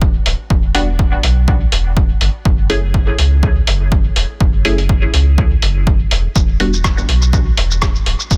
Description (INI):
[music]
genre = dub techno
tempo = 123 BPM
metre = 4/4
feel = swing 55% on 16ths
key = E dorian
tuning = A4 = 440 Hz
[part]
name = warm sub bass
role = bass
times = 0.0-8.4 s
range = D1 to C#2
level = -18 LUFS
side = equal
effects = tube saturation, sidechain pumping
[part]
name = electronic kick drum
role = drums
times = 0.0-8.4 s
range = none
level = -18 LUFS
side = equal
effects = none
[part]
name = lo-fi sampler-style drum kit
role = drums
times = 0.3-8.4 s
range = hi-hat, rim click, shaker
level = -20 LUFS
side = equal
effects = none
[part]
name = filtered dub chord stab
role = stabs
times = 0.7-6.7 s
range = G3 to G#4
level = -25 LUFS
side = equal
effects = phaser, cassette tape, dub echo
[sound]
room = little or no reverb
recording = none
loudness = -14 LUFS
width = mono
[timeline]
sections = 0.0-8.4 A section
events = none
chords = 0.0 Em7; 2.5 F#m7; 6.4 Em7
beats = 0.01 | 0.50 0.99 1.48 1.97 | 2.45 2.94 3.43 3.92 | 4.41 4.89 5.38 5.87 | 6.36 6.84 7.33 7.82 | 8.31